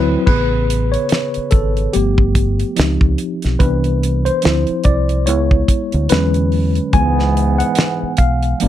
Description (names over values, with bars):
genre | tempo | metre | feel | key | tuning
R&B, neo-soul | 72 BPM | 4/4 | swing 58% on 16ths | unclear | A4 = 440 Hz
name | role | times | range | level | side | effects
tine electric piano | accompaniment | 0.0-8.7 s | C#3 to G#5 | -18 LUFS | left 1 dB | overdrive, medium stereo tremolo
deep dub fingered electric bass | bass | 0.0-8.7 s | G1 to E2 | -17 LUFS | equal | none
damped 70s drum kit | drums | 0.3-8.7 s | crash cymbal, hi-hat, kick drum, snare drum | -17 LUFS | equal | none
bright trombone section | stabs | 6.9-8.7 s | G#2 to D4 | -22 LUFS | right 6 dB | none
room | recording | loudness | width
little or no reverb | dark, warm production | -13 LUFS | side -12 dB against mid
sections
0.3-8.7 A section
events
band accent 0.0; tine electric piano solo 0.3-8.7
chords
0.3 Amaj9; 1.9 G7; 2.8 C#maj7; 3.6 Cmaj7; 4.4 Dm7; 5.3 C#m7; 6.1 E13; 6.9 C#m7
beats
| 0.27 1.10 1.94 2.77 | 3.60 4.43 5.27 6.10 | 6.93 7.77 8.60